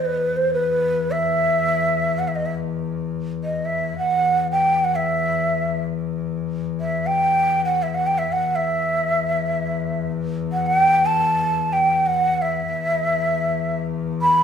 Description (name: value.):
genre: Arabic maqam ensemble.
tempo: free time.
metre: none.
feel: none.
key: E minor.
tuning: A4 = 438 Hz.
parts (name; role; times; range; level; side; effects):
breathy mellow ney; melody; 0.0-14.4 s; B4 to B5; -19 LUFS; right 1 dB; none.
rich double bass; drone; 0.0-14.4 s; E2; -26 LUFS; left 8 dB; none.
room: moderate large studio reverb, RT60 1.1 s.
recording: band playing live in one room.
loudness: -19 LUFS.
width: side -8 dB against mid.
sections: 0.0-14.4 A section.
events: none.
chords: none.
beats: free time.